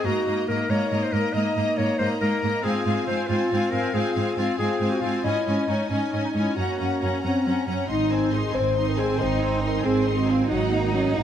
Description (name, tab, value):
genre	cinematic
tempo	92 BPM (dotted quarters)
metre	12/8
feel	straight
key	Ab mixolydian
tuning	A4 = 442 Hz
part	clear symphonic violin section	melody	0.0-11.2 s	Gb5 to C6	-35 LUFS	equal	none
part	bright clarinet	second line	0.0-7.2 s	Db4 to Eb5	-28 LUFS	left 1 dB	none
part	warm symphonic violin section	second line	0.0-11.2 s	C5 to Gb5	-33 LUFS	left 6 dB	none
part	rich symphonic viola section	accompaniment	0.0-11.2 s	Gb3 to Eb4	-30 LUFS	right 1 dB	none
part	mellow French horn section	sustained chords	0.0-11.2 s	Bb3 to Eb5	-28 LUFS	left 3 dB	none
part	rich studio cello section	bass	0.1-11.2 s	Gb2 to Eb4	-26 LUFS	right 2 dB	none
part	clear trombone section	sustained chords	7.9-11.2 s	Eb3 to Eb4	-32 LUFS	right 4 dB	none
part	rich symphonic double bass section	bass	7.9-11.2 s	Ab1	-26 LUFS	right 4 dB	none
room	moderate recital hall reverb, RT60 1.7 s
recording	none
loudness	-21 LUFS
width	side -9 dB against mid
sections	0.0-7.9 A section; 7.9-11.2 A section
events	none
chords	0.1 Eb5/Ab; 2.6 Fm/Ab; 5.2 Dbmadd9/Ab; 6.6 Gb; 7.9 Ab; 10.5 Ebm/Ab